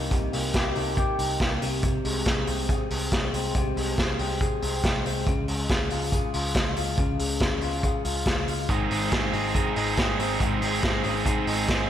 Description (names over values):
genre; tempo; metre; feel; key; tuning
jangly indie pop; 140 BPM; 4/4; straight; Ab major; A4 = 440 Hz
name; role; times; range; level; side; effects
electric guitar through a small old amp; arpeggios; 0.0-11.9 s; Ab2 to Ab4; -29 LUFS; left 3 dB; slapback echo
vintage muted picked electric bass; bass; 0.0-11.9 s; Ab1 to Db2; -31 LUFS; equal; none
vintage drum kit; drums; 0.1-11.8 s; hi-hat, kick drum, snare drum; -26 LUFS; equal; none
crunchy overdriven guitar; accompaniment; 8.7-11.9 s; Ab2 to Ab4; -27 LUFS; right 5 dB; slapback echo
room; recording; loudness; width
moderate lush hall reverb, RT60 1.9 s, small room ambience; big arena sound; -23 LUFS; side -10 dB against mid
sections
0.0-11.9 A section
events
none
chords
0.0 Cm7; 1.6 Ab/C; 5.3 Db; 8.7 Ab